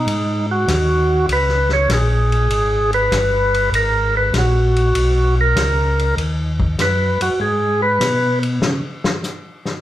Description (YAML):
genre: soul jazz organ trio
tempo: 98 BPM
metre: 4/4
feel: swing 69% on 8ths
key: G# minor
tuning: A4 = 441 Hz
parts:
  - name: percussive tonewheel organ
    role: melody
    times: 0.0-8.4 s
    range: D#4 to C#5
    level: -17 LUFS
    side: equal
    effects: slow rotary speaker
  - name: tonewheel organ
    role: bass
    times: 0.0-8.8 s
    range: G1 to C#3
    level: -18 LUFS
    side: equal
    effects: chorus vibrato, slow rotary speaker
  - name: warm soul drum kit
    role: drums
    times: 0.1-9.7 s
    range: hi-hat, kick drum, ride cymbal, snare drum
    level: -24 LUFS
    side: left 2 dB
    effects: none
room: moderate large studio reverb, RT60 0.9 s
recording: band playing live in one room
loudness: -15 LUFS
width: side -13 dB against mid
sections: 0.0-9.8 A section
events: tonewheel organ solo 0.0-9.8; drum solo 8.6-9.8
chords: 0.0 G#7(no3); 1.3 C#5; 3.7 G#m7; 8.6 N.C.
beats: 0.07 0.68 | 1.29 1.90 2.51 3.12 | 3.73 4.34 4.96 5.57 | 6.18 6.79 7.40 8.01 | 8.62 9.23